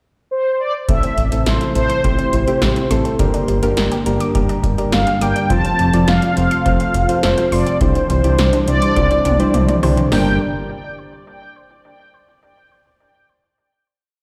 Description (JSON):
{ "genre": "synth-pop", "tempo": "104 BPM", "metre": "4/4", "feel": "straight", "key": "G dorian", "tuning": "A4 = 442 Hz", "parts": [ { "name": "mellow synth brass", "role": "melody", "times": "0.3-10.4 s", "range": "C5 to A5", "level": "-22 LUFS", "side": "equal", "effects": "chorus, tape echo" }, { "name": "soft electric-piano-like synth keys", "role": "accompaniment", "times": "0.9-10.4 s", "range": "A3 to D5", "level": "-24 LUFS", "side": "equal", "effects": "chorus" }, { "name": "chorused pulse-width pad", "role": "sustained chords", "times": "0.9-10.4 s", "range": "Bb2 to G4", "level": "-25 LUFS", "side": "equal", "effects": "none" }, { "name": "analog pluck", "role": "arpeggios", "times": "0.9-10.4 s", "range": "D3 to D6", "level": "-31 LUFS", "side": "equal", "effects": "none" }, { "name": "smooth synth bass", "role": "bass", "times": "0.9-10.4 s", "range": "F1 to C2", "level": "-21 LUFS", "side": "equal", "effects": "none" }, { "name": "electro analog drum machine", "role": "drums", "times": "0.9-10.3 s", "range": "hi-hat, kick drum, snare drum, toms", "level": "-23 LUFS", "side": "equal", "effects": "none" } ], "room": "moderate lush hall reverb, RT60 1.7 s, digital ambience", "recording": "played on a big sound system in a bare room, large studio reverb", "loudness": "-16 LUFS", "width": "mono", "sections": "0.0-0.9 pickup bar; 0.9-10.1 pre-chorus; 10.1-12.4 final chord", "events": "drum fill 9.0-10.1", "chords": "0.0 N.C.; 0.9 Am; 3.2 Gm; 5.5 F; 7.8 Cadd9; 10.1 Gm", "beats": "0.31 | 0.89 1.46 2.04 2.62 | 3.19 3.77 4.35 4.92 | 5.50 6.08 6.66 7.23 | 7.81 8.39 8.96 9.54 | 10.12" }